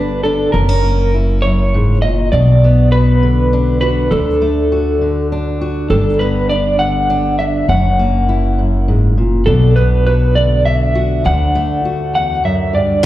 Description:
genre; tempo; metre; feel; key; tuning
folk; 67 BPM (dotted quarters); 6/8; straight; unclear; A4 = 440 Hz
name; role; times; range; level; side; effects
electric guitar through a small old amp; melody; 0.0-13.0 s; A4 to F#5; -17 LUFS; equal; tremolo, slapback echo
fingerpicked steel-string acoustic guitar; accompaniment; 0.0-13.0 s; D2 to F#4; -17 LUFS; left 1 dB; slapback echo
upright bass; bass; 0.0-13.0 s; F#1 to D2; -15 LUFS; equal; none
room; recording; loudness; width
light reverb; live gig heard through the venue's PA, recital hall reverb; -11 LUFS; side -14 dB against mid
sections
0.0-13.0 A section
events
none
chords
0.0 G; 0.5 F#7; 2.3 Bm; 4.1 D; 5.9 G; 7.7 F#7; 9.5 Bm; 11.3 D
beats
| 0.54 1.43 | 2.32 3.22 | 4.11 5.00 | 5.90 6.79 | 7.68 8.58 | 9.47 10.36 | 11.26 12.15

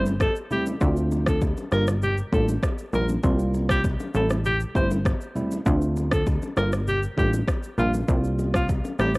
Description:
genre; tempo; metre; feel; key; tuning
afrobeats; 99 BPM; 4/4; straight; D minor; A4 = 441 Hz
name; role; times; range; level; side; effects
clear alto saxophone; melody; 0.0-9.1 s; F4 to C5; -28 LUFS; equal; cassette tape
tine electric piano; accompaniment; 0.0-9.2 s; G3 to F4; -27 LUFS; right 1 dB; overdrive, cassette tape
plucky analog bass; bass; 0.0-9.2 s; G1 to D2; -24 LUFS; equal; none
afro-pop drum kit; drums; 0.1-9.2 s; kick drum, rim click, shaker; -25 LUFS; equal; cassette tape
bongos and congas; percussion; 0.1-9.2 s; none; -34 LUFS; left 2 dB; none
room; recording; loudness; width
little or no reverb; home recording on cassette; -21 LUFS; side -25 dB against mid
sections
0.0-9.2 A section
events
none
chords
0.0 Am7; 0.8 Dm7; 1.7 Gm7; 3.2 C7sus4; 4.1 Am7; 5.7 Dm7; 6.6 Gm7; 8.1 C7sus4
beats
0.20 | 0.81 1.42 2.02 2.63 | 3.23 3.84 4.45 5.05 | 5.66 6.27 6.87 7.48 | 8.08 8.69

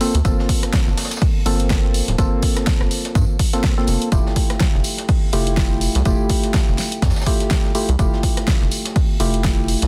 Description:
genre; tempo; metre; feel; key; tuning
deep house; 124 BPM; 4/4; swing 58% on 16ths; unclear; A4 = 441 Hz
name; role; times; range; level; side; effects
percussive organ stab; stabs; 0.0-9.9 s; A3 to A4; -26 LUFS; equal; chorus, sidechain pumping, digital delay
deep house drum kit; drums; 0.0-9.9 s; hi-hat, rim click, snare drum; -27 LUFS; equal; overdrive, studio reverb
jazz brush drum kit; drums; 0.0-9.9 s; hi-hat, snare drum, tambourine; -35 LUFS; equal; sidechain pumping on hats, high-pass filter on hats, studio reverb, soft clipping on snare, high-pass filter on snare, sidechain pumping on perc, high-pass filter on perc, high-pass filter on room
rubbery square bass; bass; 0.1-9.9 s; D1 to G2; -22 LUFS; equal; sidechain pumping
electronic kick drum; drums; 0.2-9.6 s; none; -20 LUFS; equal; overdrive, studio reverb
room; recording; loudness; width
small room ambience; dense, heavily limited modern master; -18 LUFS; mono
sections
0.0-9.9 A section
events
none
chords
0.0 Gm11; 4.1 Fmaj9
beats
| 0.25 0.73 1.22 1.70 | 2.19 2.67 3.15 3.64 | 4.12 4.61 5.09 5.57 | 6.06 6.54 7.02 7.51 | 7.99 8.48 8.96 9.44

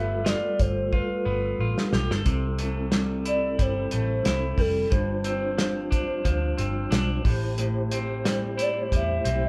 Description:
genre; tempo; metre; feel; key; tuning
indie pop, bedroom pop; 90 BPM; 4/4; swing 55% on 16ths; C major; A4 = 444 Hz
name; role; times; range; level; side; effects
hollow clarinet-like synth lead; melody; 0.0-9.5 s; A4 to E5; -31 LUFS; equal; chorus
electric guitar at the edge of break-up; accompaniment; 0.0-9.5 s; G2 to A4; -35 LUFS; equal; warbly pitch drift
mellow tonewheel organ; accompaniment; 0.0-9.5 s; G3 to C5; -34 LUFS; equal; chorus vibrato, fast rotary speaker
vintage muted picked electric bass; bass; 0.0-9.5 s; F1 to E2; -31 LUFS; equal; none
cloth-damped thuddy drum kit; drums; 0.3-9.4 s; hi-hat, kick drum, snare drum; -28 LUFS; equal; none
room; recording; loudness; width
moderate studio ambience, RT60 0.5 s; band playing live in one room; -25 LUFS; mono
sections
0.0-2.3 A section; 2.3-9.5 B section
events
drum fill 0.9-2.3; soft synth lead solo 2.3-9.5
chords
0.0 G9; 2.3 C6; 4.9 G7sus4; 7.3 Am7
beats
0.26 0.92 1.59 | 2.26 2.92 3.59 4.25 | 4.92 5.59 6.25 6.92 | 7.59 8.25 8.92

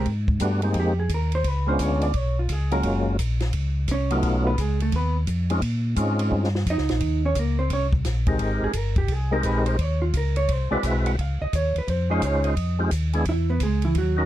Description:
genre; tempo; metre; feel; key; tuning
soul jazz organ trio; 173 BPM; 4/4; swing 64% on 8ths; Ab major, Db major from 11.2 s; A4 = 441 Hz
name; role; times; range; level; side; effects
vintage hollow-body jazz guitar; accompaniment; 0.0-14.3 s; E3 to Gb5; -27 LUFS; right 3 dB; none
mellow tonewheel organ; bass; 0.0-14.3 s; Gb1 to Bb2; -24 LUFS; equal; stopped rotary speaker
compact cocktail drum kit; drums; 0.1-14.1 s; hi-hat, kick drum, ride cymbal, snare drum; -30 LUFS; equal; none
percussive tonewheel organ; melody; 0.4-14.3 s; Gb3 to C5; -24 LUFS; left 1 dB; slow rotary speaker, overdrive, chorus vibrato
room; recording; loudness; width
little or no reverb; dark, warm production; -21 LUFS; side -13 dB against mid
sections
0.1-11.2 A section; 11.2-14.3 A section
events
hollow-body jazz guitar solo 0.1-14.3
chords
0.1 Abmaj9; 1.5 Db7b9; 2.8 Gbmaj9; 4.2 B7#11; 5.6 Bbm11; 7.0 Eb5; 8.4 Abmaj9; 9.8 Db69; 10.5 Ab7alt; 11.2 Dbmaj7; 12.6 Fm7; 13.3 E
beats
| 0.06 0.41 0.76 1.10 | 1.45 1.80 2.15 2.49 | 2.84 3.19 3.54 3.88 | 4.23 4.58 4.92 5.27 | 5.62 5.97 6.32 6.66 | 7.01 7.36 7.70 8.05 | 8.40 8.75 9.09 9.44 | 9.79 10.13 10.48 10.83 | 11.18 11.52 11.87 12.22 | 12.57 12.91 13.26 13.61 | 13.96

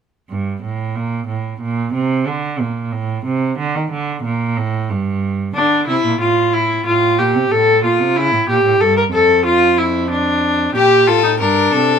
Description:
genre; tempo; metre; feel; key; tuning
classical, baroque-style fugue for string quartet; 92 BPM; 4/4; straight; G minor; A4 = 440 Hz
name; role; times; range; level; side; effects
rich cello; bass; 0.3-12.0 s; F2 to Eb3; -19 LUFS; right 4 dB; none
rich viola; accompaniment; 5.5-12.0 s; D4 to Bb4; -13 LUFS; left 1 dB; none
rich violin; second line; 10.8-12.0 s; G4 to Bb4; -14 LUFS; left 8 dB; none
room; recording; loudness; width
light reverb; minimal, uncompressed stereo recording; -14 LUFS; side -7 dB against mid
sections
0.3-12.0 A section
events
none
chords
0.3 Gm; 1.6 Bb; 2.9 D5/A; 4.2 Gm; 5.6 Dm; 6.9 F/A; 8.2 A7(no3); 9.5 Dm/F; 10.8 Gm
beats
| 0.29 0.95 1.61 2.27 | 2.92 3.59 4.24 4.90 | 5.55 6.21 6.86 7.51 | 8.17 8.81 9.46 10.11 | 10.76 11.40

